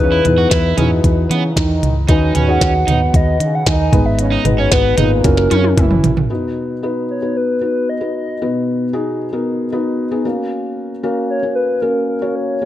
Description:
piano-driven pop; 114 BPM; 4/4; straight; B major; A4 = 441 Hz
hollow clarinet-like synth lead; melody; 0.0-12.7 s; A#4 to G#5; -19 LUFS; left 1 dB; chorus
dark French horn section; second line; 0.0-6.1 s; A#2 to E4; -22 LUFS; right 3 dB
felt-muted upright piano; accompaniment; 0.0-12.7 s; G#2 to C#5; -19 LUFS; left 2 dB
vintage muted fingered electric bass; bass; 0.0-6.3 s; F#1 to E3; -17 LUFS; equal
crunchy overdriven guitar; riff; 0.1-5.6 s; B3 to F#4; -23 LUFS; right 8 dB
glitchy drum kit; drums; 0.2-6.3 s; hi-hat, kick drum, snare drum, toms; -16 LUFS; right 1 dB
digital ambience; -13 LUFS; side -13 dB against mid
0.0-6.3 A section; 6.3-12.7 B section
drum fill 5.2-6.3
0.0 Emaj7; 2.1 B6/D#; 3.9 G#m; 5.2 F#7; 6.3 B; 10.2 F#
0.51 1.03 1.56 | 2.09 2.61 3.14 3.67 | 4.19 4.72 5.25 5.77 | 6.30 6.82 7.35 7.88 | 8.40 8.93 9.46 9.98 | 10.51 11.03 11.56 12.09 | 12.61

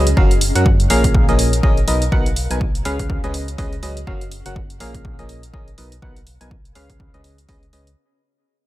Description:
piano house; 123 BPM; 4/4; swing 58% on 16ths; A4 = 440 Hz
barking FM electric piano; riff; 0.0-7.9 s; A#2 to G#5; -22 LUFS; equal; chorus, sidechain pumping, low-pass filter, tape echo
organ-like FM bass; bass; 0.0-8.0 s; F#1 to F#2; -21 LUFS; equal; sidechain pumping
granular cloud pad; texture; 0.0-8.0 s; B3 to A#4; -32 LUFS; left 2 dB
electronic hi-hat; drums; 0.1-8.0 s; -26 LUFS; right 1 dB; overdrive
electronic kick drum; drums; 0.2-7.6 s; -18 LUFS; equal; overdrive
little or no reverb; -15 LUFS; side -16 dB against mid
0.0-8.0 A section
fade-out 0.0-8.0
0.2 F#maj7; 0.9 A#m7; 1.9 Bmaj7; 2.9 C#7; 4.1 F#maj7; 4.8 A#m7; 5.8 Bmaj7; 6.8 C#7
| 0.17 0.66 1.15 1.63 | 2.12 2.61 3.10 3.58 | 4.07 4.56 5.05 5.54 | 6.02 6.51 7.00 7.49

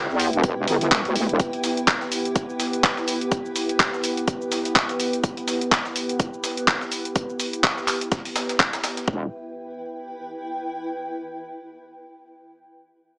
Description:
bass house; 125 BPM; 4/4; swing 57% on 16ths; E minor; A4 = 440 Hz
dark analog pad; sustained chords; 0.0-9.3 s; B3 to E5; -28 LUFS; equal; chorus, phaser, sidechain pumping
wobble bass; bass; 0.0-1.4, 9.1-9.3 s; E1 to E2; -22 LUFS; equal; chorus, tube saturation, sidechain pumping
granular cloud pad; texture; 0.0-11.0 s; E4 to G5; -33 LUFS; equal; built-in reverb, sidechain pumping
breakbeat sampler-style drum kit; drums; 0.1-9.1 s; hi-hat, snare drum, tambourine; -31 LUFS; equal; high-pass filter on perc, high-pass filter on hats, high-pass filter on snare
house drum kit; drums; 0.2-9.1 s; handclaps, hi-hat, shaker; -22 LUFS; equal
electronic kick drum; drums; 0.4-9.2 s; -24 LUFS; equal
light reverb; small speaker sound; -21 LUFS; side -28 dB against mid
0.0-9.1 A section; 9.1-11.0 B section
fade-out on ambient pad 0.0-9.1
0.0 Em
0.43 0.92 | 1.40 1.88 2.35 2.83 | 3.31 3.79 4.28 4.75 | 5.24 5.71 6.20 6.67 | 7.16 7.63 8.12 8.60 | 9.07 9.55 10.04 10.52

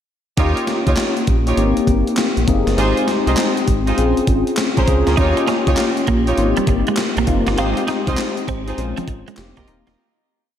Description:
R&B, new jack swing; 100 BPM; 4/4; swing 65% on 16ths; A4 = 440 Hz
mellow tine electric piano; accompaniment; 0.4-10.0 s; Ab3 to Bb4; -19 LUFS; left 4 dB; phaser
clear studio string section; stabs; 0.4-10.0 s; Db4 to Eb5; -23 LUFS; right 1 dB; slapback echo
round analog bass; bass; 0.4-10.0 s; Eb1 to Eb2; -20 LUFS; right 1 dB
gated 80s digital drum machine; drums; 0.4-10.0 s; handclaps, hi-hat, kick drum, snare drum; -21 LUFS; equal; gated reverb, gated reverb snare, overdrive
clean electric guitar; riff; 5.2-9.9 s; F3 to F4; -24 LUFS; right 6 dB; analog chorus
moderate scoring stage reverb, RT60 2.1 s; big arena sound; -15 LUFS; side -9 dB against mid
0.4-10.0 verse
fade-out 7.6-10.0
0.4 Eb9; 1.6 Abmaj7; 2.8 Fm7/Ab; 4.0 Bbm9; 5.2 Eb9; 6.4 Abmaj7; 7.6 Fm7/Ab; 8.8 Bbm9; 9.4 F9sus4
| 0.38 0.98 1.58 2.18 | 2.78 3.38 3.98 4.58 | 5.18 5.78 6.38 6.98 | 7.58 8.18 8.78 9.38

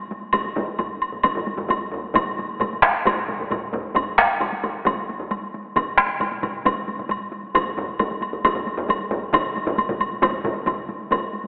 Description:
japanese traditional, taiko drum ensemble; 134 BPM; 4/4; straight
taiko ensemble; percussion; 0.0-11.5 s; -31 LUFS; equal
taiko ensemble; percussion; 0.3-11.2 s; -25 LUFS; equal
taiko ensemble; percussion; 0.3-11.2 s; -30 LUFS; equal
woodblock; percussion; 0.3-11.2 s; -23 LUFS; equal
taiko ensemble; percussion; 2.1-10.8 s; -23 LUFS; equal
wet concert hall reverb, RT60 2.3 s; telephone sound; -20 LUFS; side -40 dB against mid
0.0-11.1 A section
speeding up 0.0-11.5
| 0.33 0.79 1.24 1.70 | 2.15 2.61 3.06 3.51 | 3.96 4.41 4.87 5.32 | 5.76 6.21 6.66 7.11 | 7.56 8.00 8.45 8.90 | 9.34 9.79 10.23 10.68 | 11.12

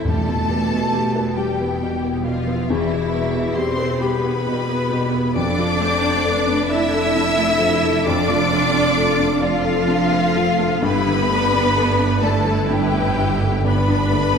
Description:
cinematic, emotional film score for orchestra; 42-46 BPM (dotted quarters); 6/8; rubato; A4 = 440 Hz
warm symphonic violin section; melody; 0.0-14.4 s; E5 to E6; -24 LUFS; left 3 dB
felt-muted upright piano; accompaniment; 0.0-14.4 s; E2 to D5; -23 LUFS; left 1 dB
rich symphonic viola section; accompaniment; 0.0-14.4 s; G3 to C5; -28 LUFS; equal
concert harp; arpeggios; 0.0-14.4 s; E2 to A4; -27 LUFS; left 6 dB
rich symphonic cello section; bass; 0.0-14.4 s; E3 to E4; -24 LUFS; right 4 dB
rich symphonic violin section; second line; 0.1-14.4 s; E4 to E5; -25 LUFS; left 1 dB
warm symphonic double bass section; bass; 0.1-14.4 s; E1 to G1; -25 LUFS; right 3 dB
timpani; percussion; 0.1-1.3 s; E2; -25 LUFS; equal
wet scoring stage reverb, RT60 2.1 s; heard from further back in the room; -16 LUFS; side -6 dB against mid
0.0-14.4 A section
0.0 Em; 5.4 Dm/F; 10.8 Gadd9
| 0.05 1.38 | 2.69 4.02 | 5.36 6.71 | 8.06 9.42 | 10.84 12.23 | 13.65

